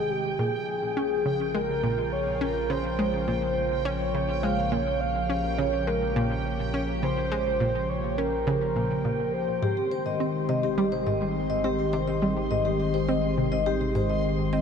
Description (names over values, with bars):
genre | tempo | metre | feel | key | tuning
ambient, sequencer-driven space music | 104 BPM | 4/4 | straight | unclear | A4 = 440 Hz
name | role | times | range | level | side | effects
breathy flute-like synth lead | melody | 0.0-9.6 s | G4 to F5 | -29 LUFS | equal | analog chorus, shimmer reverb, tape echo
sweeping resonant pad | sustained chords | 0.0-14.6 s | C3 to G5 | -31 LUFS | equal | chorus, shimmer reverb
round analog bass | bass | 0.0-14.6 s | Ab1 to Bb1 | -34 LUFS | equal | none
bubbling stepped-filter texture | texture | 0.0-14.6 s | G5 to C6 | -37 LUFS | right 1 dB | chorus, built-in reverb, shimmer reverb
analog pluck | riff | 0.4-14.6 s | Ab2 to Db4 | -30 LUFS | right 1 dB | chorus, shimmer reverb, tape echo
vibraphone with soft mallets | arpeggios | 9.6-14.6 s | G4 to Eb5 | -28 LUFS | left 3 dB | auto-pan, shimmer reverb, tape echo
room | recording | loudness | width
wet huge ambient reverb, RT60 7.6 s | nothing above 11.0 kHz | -24 LUFS | side -6 dB against mid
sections
0.0-14.6 A section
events
fade-in on analog synth pad 0.0-14.6; fade-in on analog synth bass 0.0-14.6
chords
0.4 Bbm; 9.6 Abmaj7